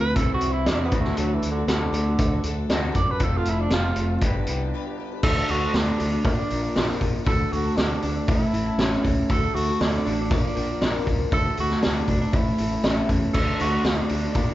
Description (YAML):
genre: folk rock and heartland rock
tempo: 118 BPM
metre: 4/4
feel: straight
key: unclear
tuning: A4 = 440 Hz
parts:
  - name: breathy tenor saxophone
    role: melody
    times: 0.0-14.5 s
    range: D3 to D5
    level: -28 LUFS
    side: right 2 dB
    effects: none
  - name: picked twelve-string acoustic guitar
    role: accompaniment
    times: 0.0-14.5 s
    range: A2 to C5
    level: -33 LUFS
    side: left 6 dB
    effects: none
  - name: electric guitar through a small old amp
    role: riff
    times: 0.0-14.5 s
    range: F2 to G4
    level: -27 LUFS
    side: equal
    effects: none
  - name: modern bright fingered electric bass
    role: bass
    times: 0.0-14.5 s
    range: F1 to F#2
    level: -28 LUFS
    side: equal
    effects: none
  - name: vintage drum kit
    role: drums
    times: 0.2-14.5 s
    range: crash cymbal, hi-hat, kick drum, snare drum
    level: -24 LUFS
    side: equal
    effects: none
  - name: reed electric piano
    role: accompaniment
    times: 5.2-14.5 s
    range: C#4 to C5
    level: -38 LUFS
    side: right 4 dB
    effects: none
room: wet large studio reverb, RT60 0.8 s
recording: band playing live in one room, nothing above 7.6 kHz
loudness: -20 LUFS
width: side -14 dB against mid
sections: 0.0-5.2 A section; 5.2-14.5 B section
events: tenor saxophone solo 0.0-5.2; break 4.7-5.2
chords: 0.2 C; 0.9 D; 3.2 F; 4.2 G; 5.2 D; 6.3 Bb; 7.3 D; 8.3 A; 9.3 D; 10.3 Bb; 11.3 D; 12.3 A; 13.3 D